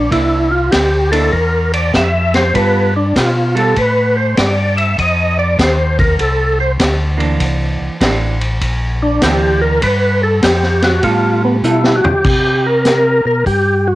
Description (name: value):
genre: soul jazz organ trio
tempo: 99 BPM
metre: 4/4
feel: swing 66% on 8ths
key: C mixolydian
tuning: A4 = 441 Hz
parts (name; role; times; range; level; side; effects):
- percussive tonewheel organ; melody; 0.0-14.0 s; B3 to E5; -14 LUFS; equal; slow rotary speaker, overdrive, chorus vibrato, cassette tape
- mellow tonewheel organ; bass; 0.0-14.0 s; A1 to C3; -16 LUFS; equal; slow rotary speaker
- vintage hollow-body jazz guitar; accompaniment; 0.1-12.0 s; E3 to A4; -19 LUFS; right 5 dB; cassette tape
- vintage drum kit; drums; 0.1-13.6 s; crash cymbal, hi-hat, kick drum, ride cymbal, snare drum, toms; -18 LUFS; equal; cassette tape
room: moderate studio reverb, RT60 0.6 s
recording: home recording on cassette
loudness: -11 LUFS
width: side -16 dB against mid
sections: 0.0-12.2 A section; 12.2-14.0 B section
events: tonewheel organ solo 0.0-12.2; drum fill 11.6-12.2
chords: 0.0 C9; 2.5 G9; 5.0 F5; 7.4 C9; 9.8 G9; 12.2 C5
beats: | 0.11 0.72 1.33 1.94 | 2.54 3.15 3.76 4.37 | 4.97 5.58 6.19 6.80 | 7.40 8.01 8.62 9.22 | 9.83 10.43 11.04 11.64 | 12.24 12.85 13.45